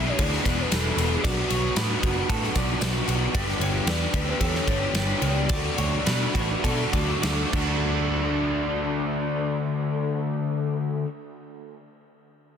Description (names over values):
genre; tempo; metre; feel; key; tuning
rock, shoegaze and dream pop; 97-114 BPM; 4/4; straight; D major; A4 = 440 Hz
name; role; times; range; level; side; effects
pure breathy sine lead; melody; 0.0-10.6 s; F#4 to E5; -34 LUFS; left 3 dB; chorus, slapback echo
clean electric guitar; arpeggios; 0.0-8.6 s; D4 to D5; -35 LUFS; right 8 dB; wide subtle chorus, slapback echo
raw garage guitar; riff; 0.0-11.1 s; E2 to G#4; -29 LUFS; left 9 dB; overdrive, ensemble chorus
raw garage guitar; riff; 0.0-11.1 s; E2 to G4; -31 LUFS; right 13 dB; overdrive, reverse reverb
picked electric bass; bass; 0.0-10.6 s; E1 to B2; -28 LUFS; equal; none
huge arena drum kit; drums; 0.2-7.7 s; crash cymbal, kick drum, ride cymbal, snare drum; -27 LUFS; equal; none
tambourine; percussion; 0.5-3.2 s; none; -40 LUFS; left 14 dB; none
room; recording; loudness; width
small room ambience; dense, heavily limited modern master; -22 LUFS; side -8 dB against mid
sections
0.0-7.8 A section; 7.8-12.6 B section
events
slowing down 3.3-7.8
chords
0.0 E7; 1.2 Bm7; 3.3 G; 5.5 Dmaj7; 7.5 D